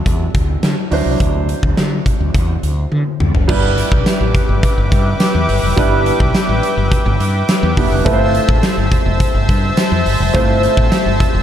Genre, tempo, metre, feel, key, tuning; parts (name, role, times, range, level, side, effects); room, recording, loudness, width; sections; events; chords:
1980s-style pop; 105 BPM; 4/4; straight; G mixolydian from 3.5 s; A4 = 436 Hz
warm grand piano; accompaniment; 0.0-11.4 s; F#3 to C5; -20 LUFS; right 2 dB; lush chorus
mellow fretless electric bass; bass; 0.0-11.4 s; F1 to D3; -17 LUFS; equal
big rock drum kit; drums; 0.1-11.3 s; crash cymbal, hi-hat, kick drum, snare drum, tambourine, toms; -16 LUFS; equal
brassy analog pad; sustained chords; 3.5-11.4 s; B4 to E6; -20 LUFS; left 2 dB; chorus
light reverb, small room ambience; -12 LUFS; side -10 dB against mid
0.0-3.5 A section; 3.5-11.4 B section
drum fill 2.9-3.5
0.0 Dadd9; 3.5 G6; 8.1 Fmaj7